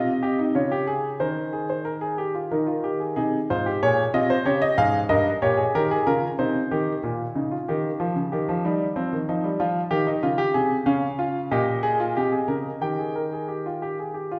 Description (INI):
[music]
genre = classical, baroque-style 3-part fugue for grand piano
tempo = 93 BPM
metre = 3/4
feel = straight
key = unclear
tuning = A4 = 442 Hz
[part]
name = warm grand piano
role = solo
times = 0.0-14.4 s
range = G2 to G5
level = -24 LUFS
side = equal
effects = none
[sound]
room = wet recital hall reverb, RT60 1.5 s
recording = heard from further back in the room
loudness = -24 LUFS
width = mono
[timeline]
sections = 0.0-3.2 A section; 3.2-7.0 B section; 7.0-14.4 A section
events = none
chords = 0.0 Bbsus4 (rootless); 0.6 Db; 1.2 Ebsus4; 2.5 Eb; 3.2 Ab; 4.5 Db; 5.1 Eb7/G; 6.4 Cm; 7.0 Gm7b5/Bb; 8.3 Ebadd9; 9.0 F5; 10.2 Dbmaj7#11; 10.9 Bbm; 12.8 Eb